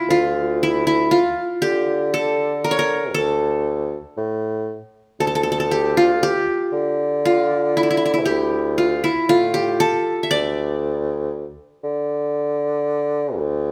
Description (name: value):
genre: Arabic maqam ensemble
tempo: 117 BPM (eighths)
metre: 10/8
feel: straight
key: D maqam nahawand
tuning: A4 = 440 Hz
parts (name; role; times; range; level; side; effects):
- qanun; melody; 0.0-13.7 s; E4 to E5; -21 LUFS; equal; none
- mellow bassoon; bass; 0.1-13.7 s; D2 to D3; -24 LUFS; equal; none
room: moderate recital hall reverb, RT60 1.4 s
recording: none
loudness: -20 LUFS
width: mono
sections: 0.0-13.7 A section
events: none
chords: none